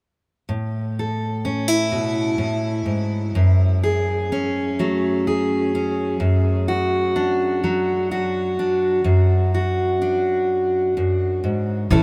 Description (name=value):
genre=acoustic folk-pop ballad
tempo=42 BPM (dotted quarters)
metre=6/8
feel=straight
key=unclear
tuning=A4 = 440 Hz
part: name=fingerpicked steel-string acoustic guitar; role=accompaniment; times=0.5-12.0 s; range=F#2 to A4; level=-21 LUFS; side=equal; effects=none
part: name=upright bass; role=bass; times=11.9-12.0 s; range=A1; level=-20 LUFS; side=equal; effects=none
room=wet huge ambient reverb, RT60 7.6 s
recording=dreamy mix soaked in reverb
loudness=-21 LUFS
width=mono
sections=0.5-11.9 A section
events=none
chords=0.5 A5; 3.4 F#madd9; 6.2 D/F#